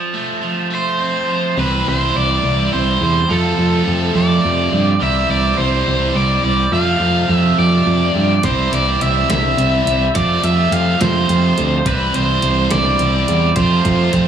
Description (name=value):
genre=indie rock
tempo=70 BPM (dotted quarters)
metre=6/8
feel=straight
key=C major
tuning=A4 = 440 Hz
part: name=high-gain distorted guitar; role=riff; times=0.0-14.3 s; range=F2 to F4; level=-19 LUFS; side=right 2 dB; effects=distortion
part: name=cranked stack guitar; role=melody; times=0.7-14.3 s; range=A4 to F5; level=-18 LUFS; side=right 1 dB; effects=overdrive, diffuse ambient delay
part: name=modern bright picked electric bass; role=bass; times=1.6-14.3 s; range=C2 to G2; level=-17 LUFS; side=right 1 dB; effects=none
part: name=detuned 8-bit digital drum machine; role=drums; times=8.4-14.3 s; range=hi-hat, kick drum, snare drum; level=-23 LUFS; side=right 1 dB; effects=overdrive
room=moderate lush hall reverb, RT60 1.6 s, digital ambience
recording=dreamy mix soaked in reverb, small room ambience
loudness=-13 LUFS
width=side -8 dB against mid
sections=0.0-1.6 A section; 1.6-14.3 B section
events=break 0.0-1.6; drum fill 13.6-14.3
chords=0.0 F; 1.6 C; 3.3 Fadd9; 5.0 C; 6.7 Fadd9; 8.4 C; 10.1 F; 11.9 C; 13.6 F